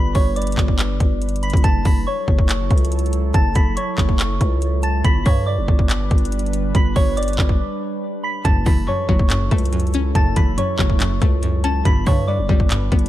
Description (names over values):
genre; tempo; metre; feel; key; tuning
hip hop, trap; 141 BPM; 4/4; half-time; F# phrygian; A4 = 440 Hz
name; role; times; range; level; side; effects
soft synth bell; melody; 0.0-13.1 s; C#5 to B6; -25 LUFS; equal; chorus, phaser, tape echo
warbly tape-like pad; sustained chords; 0.0-13.1 s; F#3 to B4; -28 LUFS; right 2 dB; chorus, built-in reverb
growling 808-style bass; bass; 0.0-13.1 s; F#1 to G2; -21 LUFS; equal; none
trap drum kit; drums; 0.1-13.1 s; handclaps, hi-hat, kick drum; -17 LUFS; equal; none
string-like resonator pluck; accompaniment; 8.4-13.1 s; F#2 to C#4; -23 LUFS; left 1 dB; chorus
room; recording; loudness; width
digital ambience; dark, warm production, lossy compression artefacts; -16 LUFS; side -14 dB against mid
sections
0.0-1.6 A section; 1.6-13.1 B section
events
break 7.6-8.4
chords
0.0 G; 1.6 F#m7; 5.0 G; 8.4 F#m7; 11.9 G